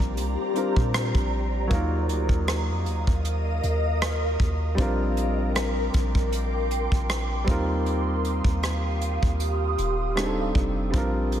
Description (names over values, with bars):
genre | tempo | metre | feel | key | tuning
contemporary R&B | 78 BPM | 4/4 | swing 54% on 16ths | Bb major | A4 = 438 Hz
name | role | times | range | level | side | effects
warm grand piano | accompaniment | 0.0-11.4 s | Gb3 to Bb4 | -29 LUFS | right 1 dB | none
ethereal airy pad | sustained chords | 0.0-11.4 s | G4 to Eb6 | -30 LUFS | equal | ensemble chorus, built-in reverb, phaser, sidechain pumping
long sustained 808-style bass | bass | 0.0-11.4 s | Eb1 to Bb2 | -27 LUFS | equal | none
soft brush drum kit | drums | 0.0-11.4 s | hi-hat, kick drum, rim click | -26 LUFS | equal | none
room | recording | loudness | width
light reverb, studio reverb | none | -22 LUFS | side -10 dB against mid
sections
0.0-11.4 A section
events
none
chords
0.0 Bb69; 1.7 Ebmadd9; 4.8 Bb69; 7.5 Eb69; 10.2 F13